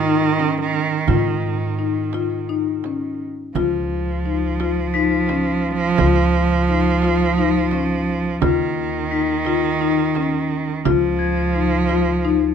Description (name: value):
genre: contemporary instrumental, chamber music in an uneven meter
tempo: 172 BPM (eighths)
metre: 7/8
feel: straight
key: Db mixolydian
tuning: A4 = 439 Hz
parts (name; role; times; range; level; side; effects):
- rich cello; second line; 0.0-12.5 s; Eb3 to F3; -20 LUFS; right 5 dB; none
- marimba with medium mallets; arpeggios; 0.0-12.4 s; Db4 to F4; -22 LUFS; left 10 dB; none
- upright bass; bass; 0.0-12.5 s; Db2 to Ab2; -25 LUFS; right 1 dB; none
- frame drum; percussion; 0.4-12.4 s; none; -25 LUFS; right 10 dB; none
- glockenspiel with rubber mallets; texture; 4.9-12.4 s; Ab6 to Cb7; -30 LUFS; left 6 dB; none
room: light reverb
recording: close, detailed microphones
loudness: -17 LUFS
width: side -7 dB against mid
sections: 0.0-12.5 A section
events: none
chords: 0.0 Ab5; 3.6 Db7; 8.4 Cb/Eb; 10.9 Db